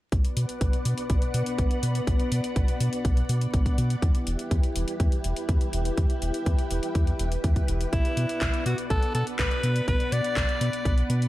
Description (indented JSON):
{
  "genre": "italo disco",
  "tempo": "123 BPM",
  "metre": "4/4",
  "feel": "straight",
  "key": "B minor",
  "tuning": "A4 = 441 Hz",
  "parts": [
    { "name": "string machine, full ensemble", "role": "sustained chords", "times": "0.3-11.3 s", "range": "B3 to F#5", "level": "-32 LUFS", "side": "left 1 dB", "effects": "ensemble chorus" },
    { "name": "round analog bass", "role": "bass", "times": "0.1-11.3 s", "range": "E1 to B2", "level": "-26 LUFS", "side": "equal", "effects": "none" },
    { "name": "electronic kick drum", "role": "drums", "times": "0.1-11.0 s", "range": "none", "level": "-25 LUFS", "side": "equal", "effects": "none" },
    { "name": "house drum kit", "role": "drums", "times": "0.1-11.3 s", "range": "handclaps, hi-hat", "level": "-35 LUFS", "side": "left 1 dB", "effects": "gated reverb" },
    { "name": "raspy alto saxophone", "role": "melody", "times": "7.9-11.1 s", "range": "E4 to D5", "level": "-29 LUFS", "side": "equal", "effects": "tape echo" }
  ],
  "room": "digital ambience",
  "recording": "vinyl crackle",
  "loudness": "-23 LUFS",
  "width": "side -16 dB against mid",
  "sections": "0.1-11.3 A section",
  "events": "filter sweep on analog synth bass 0.1-11.3",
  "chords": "0.1 Bm; 4.0 Em; 7.9 Bm"
}